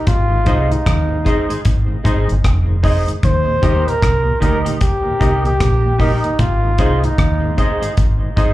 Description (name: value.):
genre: roots reggae.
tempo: 76 BPM.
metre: 4/4.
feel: swing 61% on 16ths.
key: unclear.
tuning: A4 = 438 Hz.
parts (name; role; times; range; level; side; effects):
warm flugelhorn; melody; 0.0-7.8 s; Eb4 to C5; -20 LUFS; equal; dub echo.
deep dub fingered electric bass; bass; 0.1-8.5 s; F1 to Eb2; -16 LUFS; equal; none.
deep reggae drum kit; drums; 0.1-8.5 s; hi-hat, kick drum, rim click; -17 LUFS; equal; none.
mellow tonewheel organ; accompaniment; 0.3-8.5 s; Eb2 to Eb4; -26 LUFS; left 1 dB; overdrive, chorus vibrato, slow rotary speaker, dub echo.
clean electric guitar; accompaniment; 0.5-8.5 s; Eb4 to Eb5; -26 LUFS; right 2 dB; wide subtle chorus, dub echo, slapback echo.
warm upright piano; stabs; 0.5-8.5 s; Eb4 to Eb5; -24 LUFS; left 2 dB; slapback echo.
room: light reverb.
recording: live gig heard through the venue's PA, club reverb.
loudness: -13 LUFS.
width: side -16 dB against mid.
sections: 0.0-8.5 A section.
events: none.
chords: 0.1 Ab; 3.2 Eb; 6.4 Ab.